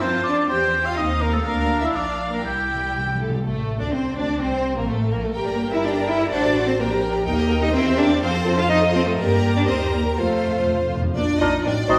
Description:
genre	quick classical-period movement for symphony orchestra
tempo	125 BPM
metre	2/4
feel	straight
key	Bb major from 7.3 s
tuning	A4 = 442 Hz
part	rich chamber violin section	melody	0.0-12.0 s	Bb3 to A5	-31 LUFS	equal	none
part	clear studio violin section	second line	0.0-12.0 s	A3 to Bb5	-33 LUFS	equal	none
part	mellow oboe	second line	0.0-3.2, 11.4-12.0 s	G4 to Bb5	-26 LUFS	equal	none
part	clear symphonic viola section	accompaniment	0.0-12.0 s	A3 to Eb5	-30 LUFS	equal	none
part	dark chamber cello section	bass	0.0-12.0 s	A2 to F4	-27 LUFS	equal	none
part	rich studio double bass section	bass	0.0-12.0 s	G1 to G2	-28 LUFS	equal	none
part	timpani	percussion	2.4-3.4, 10.2-11.1 s	F2 to C3	-30 LUFS	equal	none
part	mellow French horn section	sustained chords	3.4-12.0 s	F#3 to C5	-29 LUFS	equal	none
part	mellow concert flute	second line	11.4-12.0 s	Eb6 to F6	-27 LUFS	equal	none
part	warm clarinet	second line	11.4-12.0 s	F4 to F#4	-29 LUFS	equal	none
part	mellow bassoon	accompaniment	11.4-12.0 s	D4 to Eb4	-26 LUFS	equal	none
room	wet recital hall reverb, RT60 1.4 s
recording	recorded in a church or concert hall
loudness	-21 LUFS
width	mono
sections	0.0-3.4 A section; 3.4-11.2 A section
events	timpani fill 2.4-3.4, 10.2-11.2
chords	0.0 F; 0.5 C/E; 1.0 F7/Eb; 1.5 Bb/D; 2.4 C; 3.4 Amadd11; 4.4 Bbsus2; 4.9 N.C.; 5.4 Gm; 6.3 F#dim/A; 6.8 Gm/Bb; 7.3 Eb; 7.7 C7/E; 8.2 F; 8.7 F7; 9.2 Gm; 9.7 Eb; 10.2 F; 11.2 Bb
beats	0.02 | 0.50 0.98 | 1.46 1.94 | 2.44 2.94 | 3.44 3.92 | 4.40 4.88 | 5.36 5.84 | 6.31 6.79 | 7.27 7.75 | 8.22 8.70 | 9.19 9.68 | 10.18 10.68 | 11.17 11.66

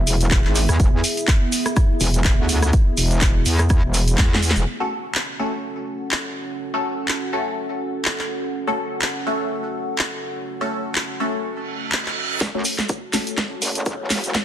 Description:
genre	bass house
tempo	124 BPM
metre	4/4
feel	swing 56% on 16ths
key	F# minor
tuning	A4 = 440 Hz
part	dark analog pad	sustained chords	0.0-14.4 s	B3 to A5	-28 LUFS	right 1 dB	chorus, phaser, sidechain pumping
part	metallic wobble bass	bass	0.0-4.7, 12.4-14.3 s	E1 to F#2	-20 LUFS	equal	chorus, tube saturation, sidechain pumping, high-pass filter
part	garage drum kit	drums	0.1-14.4 s	handclaps, hi-hat, rim click, snare drum	-23 LUFS	equal	none
part	egg shaker	percussion	0.1-4.6, 12.4-14.4 s	none	-29 LUFS	right 2 dB	none
part	electronic kick drum	drums	0.3-4.3, 12.4-14.4 s	none	-18 LUFS	equal	high-pass filter on kick, high-pass filter on room
part	band-passed chord stab	stabs	4.8-14.4 s	A3 to A4	-27 LUFS	left 2 dB	phaser, wide subtle chorus, sidechain pumping, digital delay
part	reverse cymbal and riser	sound effects	11.6-14.4 s	none	-29 LUFS	right 5 dB	none
room	light reverb, digital ambience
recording	dense, heavily limited modern master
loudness	-19 LUFS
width	side -11 dB against mid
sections	0.0-4.7 A section; 4.7-12.4 B section; 12.4-14.4 C section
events	drop 0.0-4.7; drum fill 4.2-4.7, 12.4-14.4; reverse cymbal 11.6-12.4; build-up 12.4-14.4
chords	0.0 E; 4.7 F#m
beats	0.31 | 0.80 1.28 1.76 2.25 | 2.73 3.22 3.70 4.18 | 4.67 5.15 5.64 6.12 | 6.60 7.09 7.57 8.06 | 8.54 9.02 9.51 9.99 | 10.47 10.96 11.44 11.93 | 12.41 12.89 13.38 13.86 | 14.35

